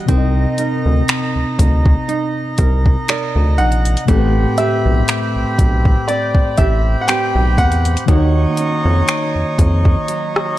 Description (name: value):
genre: contemporary R&B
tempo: 60 BPM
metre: 4/4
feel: swing 54% on 16ths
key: unclear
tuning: A4 = 435 Hz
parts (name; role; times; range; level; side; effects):
- warm grand piano; melody; 0.0-9.0 s; D5 to G5; -22 LUFS; left 1 dB; none
- mellow tine electric piano; accompaniment; 0.0-10.6 s; A2 to Eb5; -21 LUFS; left 3 dB; auto-pan
- hand-pumped harmonium; sustained chords; 0.0-10.6 s; C4 to B5; -23 LUFS; right 2 dB; none
- nylon-string guitar; arpeggios; 0.0-10.6 s; D#3 to D5; -24 LUFS; right 7 dB; none
- rubbery square bass; bass; 0.1-10.0 s; A1 to E#2; -15 LUFS; equal; none
- smooth R&B drum kit; drums; 0.1-10.6 s; finger snaps, hi-hat, kick drum, rim click; -16 LUFS; equal; none
room: small room ambience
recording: dark, warm production, lossy compression artefacts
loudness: -13 LUFS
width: side -15 dB against mid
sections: 0.0-10.6 A section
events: none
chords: 0.1 Cm9; 4.1 Am9; 8.1 D#m9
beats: | 0.08 1.08 2.08 3.08 | 4.08 5.08 6.08 7.08 | 8.08 9.08 10.08